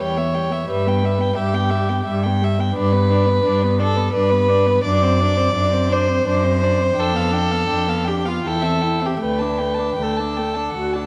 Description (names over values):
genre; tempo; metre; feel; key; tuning
classical, slow romantic movement for string quartet; 77-89 BPM; 3/4; rubato; G major; A4 = 440 Hz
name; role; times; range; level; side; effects
warm violin; melody; 0.0-11.1 s; B4 to A5; -29 LUFS; equal; none
warm violin; second line; 0.0-11.1 s; F4 to D5; -23 LUFS; equal; none
warm viola; accompaniment; 0.0-11.1 s; G3 to F#4; -28 LUFS; equal; none
clear cello; bass; 0.0-11.1 s; D2 to G2; -23 LUFS; equal; none
room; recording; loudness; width
moderate recital hall reverb, RT60 1.4 s; dark, warm production; -19 LUFS; mono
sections
0.0-11.1 A section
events
none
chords
0.0 Em; 0.7 Em/G; 2.8 G; 4.8 D7/F#; 7.0 G7/F; 8.4 C/E; 9.2 Dsus4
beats
| 0.69 1.37 2.06 | 2.76 3.45 4.14 | 4.85 5.56 6.26 | 6.97 7.70 8.44 | 9.20 9.98 10.75